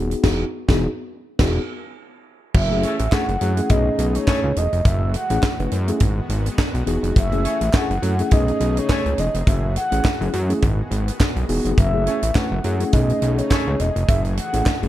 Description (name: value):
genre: early-eighties boogie funk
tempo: 104 BPM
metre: 4/4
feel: swing 56% on 16ths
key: F# dorian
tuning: A4 = 441 Hz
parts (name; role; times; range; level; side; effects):
- mellow tine electric piano; accompaniment; 0.0-14.9 s; A3 to B4; -25 LUFS; left 2 dB; slow stereo tremolo
- fat analog bass; bass; 0.0-14.9 s; D#1 to F#2; -21 LUFS; equal; none
- tight funk drum kit; drums; 0.1-14.9 s; crash cymbal, handclaps, hi-hat, kick drum, snare drum; -20 LUFS; equal; none
- lush unison pad; sustained chords; 2.5-14.9 s; C#3 to G#4; -33 LUFS; equal; chorus
- mellow horn-like synth lead; melody; 2.6-14.9 s; C#5 to F#5; -26 LUFS; equal; chorus, tape echo
- dark horn section; second line; 2.8-13.7 s; A3 to C#5; -31 LUFS; left 1 dB; none
- group handclap; percussion; 3.1-14.8 s; none; -35 LUFS; right 4 dB; none
room: light reverb, small room ambience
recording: dark, warm production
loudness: -17 LUFS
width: side -14 dB against mid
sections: 0.0-2.5 A section; 2.5-14.9 B section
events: band accent 0.2-2.5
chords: 0.0 Emaj9; 2.5 F#m9; 3.7 B13; 4.9 F#m9; 6.0 G#m7; 7.2 F#m9; 8.3 B13; 9.5 F#m9; 10.6 G#m7; 11.8 F#m9; 12.9 B13; 14.1 F#m9